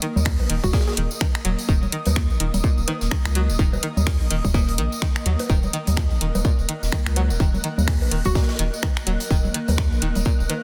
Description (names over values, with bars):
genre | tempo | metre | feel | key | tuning
minimal techno | 126 BPM | 4/4 | swing 59% on 16ths | Eb minor | A4 = 441 Hz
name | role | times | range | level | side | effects
string-like resonator pluck | riff | 0.0-10.5 s | Bb2 to Gb3 | -33 LUFS | equal | chorus, phaser, sidechain pumping, digital delay
big rock drum kit | drums | 0.0-10.6 s | hi-hat, shaker, snare drum | -41 LUFS | equal | none
house drum kit | drums | 0.0-10.6 s | finger snaps, hi-hat | -31 LUFS | equal | soft clipping on snare
ethereal airy pad | texture | 0.0-10.6 s | Bb3 to Gb6 | -34 LUFS | equal | ensemble chorus, built-in reverb, sidechain pumping
round analog bass | bass | 0.2-10.5 s | Eb1 to Eb2 | -25 LUFS | equal | tube saturation, sidechain pumping
congas and bongos | percussion | 0.2-10.6 s | none | -31 LUFS | equal | overdrive, digital delay
tambourine | percussion | 0.2-10.5 s | none | -39 LUFS | equal | none
electronic kick drum | drums | 0.3-10.4 s | none | -24 LUFS | equal | none
hollow square pluck | melody | 0.6-0.9, 8.3 s | Gb4 to Ab4 | -32 LUFS | equal | chorus, digital delay
room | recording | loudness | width
light reverb, small room ambience | dense, heavily limited modern master | -22 LUFS | mono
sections
0.0-10.6 A section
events
none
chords
0.0 Eb5